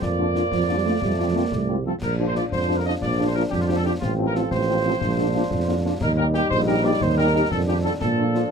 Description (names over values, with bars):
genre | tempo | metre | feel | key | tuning
military-style march for wind band | 120 BPM (dotted quarters) | 6/8 | straight | Bb major | A4 = 440 Hz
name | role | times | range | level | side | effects
warm trumpet section | melody | 0.0-8.5 s | F4 to Eb5 | -26 LUFS | right 2 dB | none
mellow trombone section | sustained chords | 0.0-8.5 s | Eb3 to Eb4 | -27 LUFS | left 2 dB | none
warm tuba | bass | 0.0-8.4 s | A1 to Bb2 | -24 LUFS | right 2 dB | none
concert snare drum, concert bass drum and clash cymbals | drums | 0.0-8.5 s | none | -31 LUFS | left 2 dB | none
dark French horn section | accompaniment | 0.2-8.4 s | F3 to G4 | -26 LUFS | left 2 dB | none
dark euphonium | second line | 0.5-1.9 s | F3 to Bb3 | -26 LUFS | right 6 dB | none
room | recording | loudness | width
light reverb | none | -20 LUFS | side -6 dB against mid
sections
0.0-8.5 A section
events
none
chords
0.0 Bb/F; 1.0 F; 2.0 Bb; 4.0 F/A; 5.0 Bb; 6.0 Eb; 7.0 Eb6; 7.5 Fsus2; 8.0 Bb